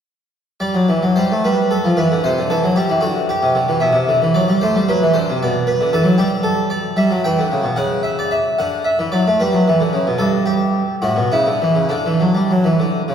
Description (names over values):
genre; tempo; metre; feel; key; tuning
classical, baroque-style suite movement for harpsichord; 66-78 BPM (dotted quarters); 6/8; rubato; G major, D major from 7.0 s; A4 = 436 Hz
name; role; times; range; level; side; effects
harpsichord; solo; 0.6-13.1 s; G2 to G5; -14 LUFS; equal; none
room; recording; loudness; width
wet church reverb, RT60 3.5 s; heard from further back in the room; -14 LUFS; side -8 dB against mid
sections
0.6-13.1 A section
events
none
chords
0.6 G5; 2.2 C; 3.8 G/B; 4.6 D7; 5.4 G/B; 7.0 Em; 7.8 N.C.; 8.6 D; 9.4 G; 10.2 N.C.; 11.0 A; 11.9 D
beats
| 0.61 1.45 | 2.25 3.04 | 3.84 4.64 | 5.43 6.21 | 6.99 7.78 | 8.59 9.39 | 10.20 11.04 | 11.92 12.81